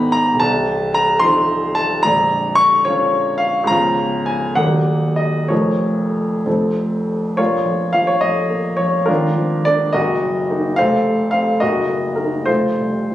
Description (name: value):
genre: classical, romantic character piece for solo piano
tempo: 62-75 BPM (dotted quarters)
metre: 6/8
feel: rubato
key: Bb minor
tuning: A4 = 440 Hz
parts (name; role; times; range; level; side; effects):
- warm grand piano; solo; 0.0-13.1 s; Bb0 to Db6; -15 LUFS; equal; none
room: moderate recital hall reverb, RT60 1.3 s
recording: recorded on a phone in the room, club reverb, compression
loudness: -15 LUFS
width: side -13 dB against mid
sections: 0.0-7.4 A section; 7.4-13.1 B section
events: none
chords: 0.4 F7/C; 2.0 Bbm; 3.7 Db; 4.6 Ebm; 5.5 Bbm/F; 6.5 F; 7.4 Bbm; 9.1 Bb7/Ab; 9.9 Ebm/Gb; 10.8 F; 11.6 Ebm/Gb; 12.5 F